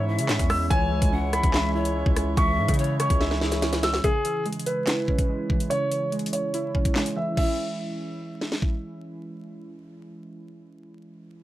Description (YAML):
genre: hip hop, drill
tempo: 144 BPM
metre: 4/4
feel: half-time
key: C# minor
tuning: A4 = 442 Hz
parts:
  - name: dark concert grand piano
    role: melody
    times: 0.0-8.6 s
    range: G#4 to E6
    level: -28 LUFS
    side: right 1 dB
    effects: tape echo
  - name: breathy bright large pan pipes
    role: second line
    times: 0.0-3.6 s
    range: G#4 to F#5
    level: -32 LUFS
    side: left 6 dB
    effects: tape echo
  - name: warbly lo-fi synth keys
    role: accompaniment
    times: 0.0-11.4 s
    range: C#3 to E5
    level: -31 LUFS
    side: right 2 dB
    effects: chorus
  - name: pedal harmonium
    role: sustained chords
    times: 0.0-4.0 s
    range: G#3 to E5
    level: -33 LUFS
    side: equal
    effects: none
  - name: distorted 808-style bass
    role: bass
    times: 0.0-4.0 s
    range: C#2 to C#3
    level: -26 LUFS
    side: equal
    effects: distortion
  - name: drill drum kit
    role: drums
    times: 0.2-8.7 s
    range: crash cymbal, handclaps, hi-hat, kick drum, rim click, snare drum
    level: -25 LUFS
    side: equal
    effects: none
room: little or no reverb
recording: vinyl crackle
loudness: -22 LUFS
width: side -14 dB against mid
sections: 0.0-4.0 A section; 4.0-7.4 B section; 7.4-10.7 C section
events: drum fill 3.2-4.0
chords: 0.0 C#m